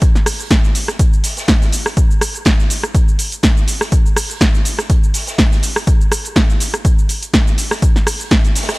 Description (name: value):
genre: house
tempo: 123 BPM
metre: 4/4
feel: swing 55% on 16ths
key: none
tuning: none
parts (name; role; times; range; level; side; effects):
- electronic kick drum; drums; 0.0-8.4 s; none; -13 LUFS; equal; none
- punchy analog drum machine; drums; 0.0-8.8 s; cabasa, hi-hat, rim click, snare drum; -17 LUFS; equal; none
- swinging big-band drum kit; drums; 0.0-8.8 s; hi-hat, snare drum; -30 LUFS; right 1 dB; sidechain pumping on hats, high-pass filter on hats, high-pass filter on snare, high-pass filter on room
room: little or no reverb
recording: transformer saturation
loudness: -12 LUFS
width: side -22 dB against mid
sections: 0.0-8.8 A section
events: none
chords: none